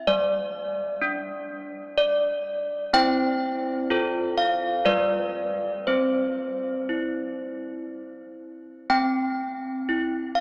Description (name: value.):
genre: classical, tune for handbells.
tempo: 61 BPM.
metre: 3/4.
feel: uneven beats.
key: C major.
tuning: A4 = 440 Hz.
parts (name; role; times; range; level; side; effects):
desk bells; solo; 0.0-10.4 s; G3 to G5; -26 LUFS; equal; none.
room: wet cathedral reverb, RT60 5.3 s.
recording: none.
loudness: -26 LUFS.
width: mono.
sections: 0.0-8.9 A section; 8.9-10.4 A section.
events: none.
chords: 0.1 G5; 3.0 C; 3.9 F; 4.9 G7; 5.9 C.